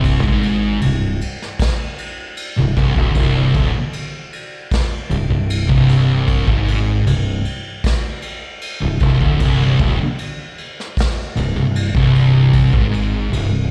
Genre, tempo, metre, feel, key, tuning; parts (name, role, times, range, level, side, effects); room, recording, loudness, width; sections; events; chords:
stoner and doom metal; 77 BPM; 4/4; straight; A4 = 439 Hz
thick fuzz guitar; riff; 0.0-13.6 s; C2 to Ab2; -22 LUFS; equal; distortion, slapback echo
thick fuzz guitar; riff; 0.0-13.6 s; C2 to Ab2; -21 LUFS; equal; distortion
growling fingered electric bass; bass; 0.0-13.7 s; C1 to Ab1; -21 LUFS; equal; overdrive
vintage brush drum kit; drums; 0.0-13.5 s; kick drum, ride cymbal, snare drum; -24 LUFS; equal
small room ambience; live gig heard through the venue's PA, recital hall reverb; -17 LUFS; mono
0.0-13.7 A section